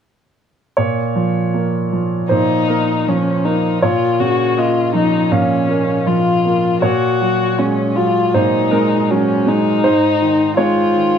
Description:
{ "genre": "neoclassical piano and strings", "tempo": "80 BPM", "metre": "4/4", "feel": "rubato", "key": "Bb minor", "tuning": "A4 = 441 Hz", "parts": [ { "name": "clear upright piano", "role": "accompaniment", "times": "0.8-11.2 s", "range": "Ab2 to F5", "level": "-16 LUFS", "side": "right 3 dB", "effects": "none" }, { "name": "dark violin", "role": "melody", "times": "2.3-11.2 s", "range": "Db4 to Gb4", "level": "-16 LUFS", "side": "left 4 dB", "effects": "slapback echo" } ], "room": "light reverb", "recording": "none", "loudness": "-13 LUFS", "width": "side -8 dB against mid", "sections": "0.8-11.2 A section", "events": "none", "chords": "0.8 Bbm; 6.8 Gbadd9/Bb; 9.8 Ab", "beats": "| 0.78 1.54 2.31 3.08 | 3.83 4.58 5.32 6.07 | 6.83 7.59 8.34 9.10 | 9.84 10.58" }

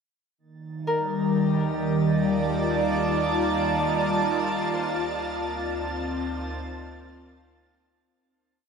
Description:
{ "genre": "ambient", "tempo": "62 BPM", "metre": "4/4", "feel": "straight", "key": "Eb lydian", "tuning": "A4 = 440 Hz", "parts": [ { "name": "airy breathy pad", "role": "sustained chords", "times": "0.7-8.1 s", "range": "Eb3 to A5", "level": "-24 LUFS", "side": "equal", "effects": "chorus, phaser" }, { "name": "deep rumbling drone", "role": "bass", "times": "1.6-8.1 s", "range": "D2 to Eb2", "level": "-40 LUFS", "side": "equal", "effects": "built-in reverb" }, { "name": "overtone-sweeping drone", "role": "drone", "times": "0.8-8.2 s", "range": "Bb3 to Eb4", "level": "-32 LUFS", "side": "right 2 dB", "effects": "chorus, built-in reverb" }, { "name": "drifting glass-harmonics texture", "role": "texture", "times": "0.9-8.2 s", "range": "A6", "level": "-38 LUFS", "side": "right 4 dB", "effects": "chorus, built-in reverb" }, { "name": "concert harp", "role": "arpeggios", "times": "0.9-6.8 s", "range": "Bb4 to C5", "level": "-33 LUFS", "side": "left 2 dB", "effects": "diffuse ambient delay" } ], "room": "wet shimmer reverb, RT60 7.8 s", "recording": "none", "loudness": "-23 LUFS", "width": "side -6 dB against mid", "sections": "0.4-8.1 A section", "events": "fade-in on synth drone 0.4-8.1; fade-in on synth texture 0.4-8.1; fade-out on harp 0.4-8.1; fade-out 4.3-8.1", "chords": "0.4 Ebmaj9#11; 4.3 Dm7", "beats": "| 0.39 1.36 2.33 3.29 | 4.26 5.23 6.20 7.17" }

